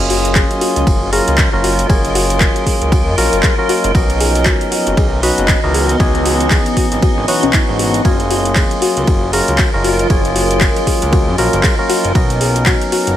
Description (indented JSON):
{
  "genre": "deep house",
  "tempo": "117 BPM",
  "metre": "4/4",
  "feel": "swing 58% on 16ths",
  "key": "F# major",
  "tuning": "A4 = 437 Hz",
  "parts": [
    { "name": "percussive tonewheel organ", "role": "stabs", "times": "0.0-13.2 s", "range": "E3 to B4", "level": "-17 LUFS", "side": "equal", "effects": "overdrive, sidechain pumping, ping-pong delay" },
    { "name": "smooth synth bass", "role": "bass", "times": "0.0-13.1 s", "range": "F#1 to F#2", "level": "-19 LUFS", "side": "equal", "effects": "sidechain pumping" },
    { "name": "granular cloud pad", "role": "texture", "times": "0.0-13.2 s", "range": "B3 to D#5", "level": "-20 LUFS", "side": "equal", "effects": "built-in reverb, sidechain pumping" },
    { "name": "soft round pluck", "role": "arpeggios", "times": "0.1-13.0 s", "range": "C#4 to C#5", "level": "-22 LUFS", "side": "left 4 dB", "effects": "chorus, sidechain pumping, dub echo" },
    { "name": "deep house drum kit", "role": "drums", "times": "0.1-13.2 s", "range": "handclaps, hi-hat, ride cymbal", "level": "-19 LUFS", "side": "right 1 dB", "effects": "overdrive, small room reverb" },
    { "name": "electronic kick drum", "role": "drums", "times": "0.4-12.8 s", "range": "none", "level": "-15 LUFS", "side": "equal", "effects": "overdrive, small room reverb" }
  ],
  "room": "light reverb, digital ambience",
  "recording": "vinyl crackle",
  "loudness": "-11 LUFS",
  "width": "side -11 dB against mid",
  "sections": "0.0-13.2 A section",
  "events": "none",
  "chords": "0.0 F#maj9; 3.9 Bmaj9; 5.7 C#m9; 8.1 F#maj9; 12.2 Bmaj9"
}